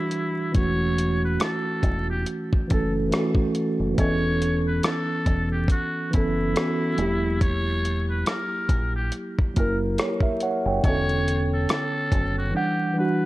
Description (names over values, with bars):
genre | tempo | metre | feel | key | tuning
lo-fi hip hop | 70 BPM | 4/4 | swing 57% on 16ths | unclear | A4 = 440 Hz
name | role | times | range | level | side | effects
trumpet with metal mute | melody | 0.0-13.3 s | E4 to C#5 | -30 LUFS | left 1 dB | low-pass filter
mellow tine electric piano | accompaniment | 0.0-13.3 s | D3 to G5 | -25 LUFS | right 1 dB | medium stereo tremolo, low-pass filter
dusty soul sampler-style drum kit | drums | 0.1-12.4 s | hi-hat, kick drum, rim click | -24 LUFS | equal | none
deep dub fingered electric bass | bass | 0.6-12.5 s | E1 to A#1 | -27 LUFS | equal | none
room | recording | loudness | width
light reverb | vinyl crackle | -21 LUFS | side -17 dB against mid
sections
0.6-13.3 A section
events
silent gap 12.6-13.3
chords
0.0 Em9; 0.6 F#m7/E; 4.0 B9sus4/E; 7.0 F#7b9/E; 10.8 Bm9/E; 12.6 Em9